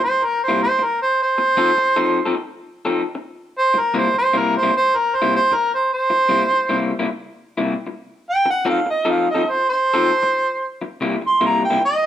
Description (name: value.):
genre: blues.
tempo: 102 BPM.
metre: 4/4.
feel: swing 65% on 8ths.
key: C mixolydian.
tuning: A4 = 441 Hz.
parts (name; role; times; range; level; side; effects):
mellow harmonica; melody; 0.0-12.1 s; Bb4 to C6; -16 LUFS; right 1 dB; overdrive.
electric guitar through a small old amp; riff; 0.0-11.8 s; C3 to A4; -22 LUFS; left 3 dB; none.
room: moderate stone room reverb, RT60 1.2 s.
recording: band playing live in one room.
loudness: -16 LUFS.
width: side -10 dB against mid.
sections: 0.0-12.1 A section.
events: none.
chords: 0.0 C7; 1.2 F7; 3.5 C7; 8.3 F7; 10.6 C7.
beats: 0.00 0.59 | 1.18 1.77 2.36 2.95 | 3.54 4.13 4.72 5.31 | 5.90 6.49 7.08 7.67 | 8.26 8.86 9.45 10.04 | 10.63 11.22 11.81.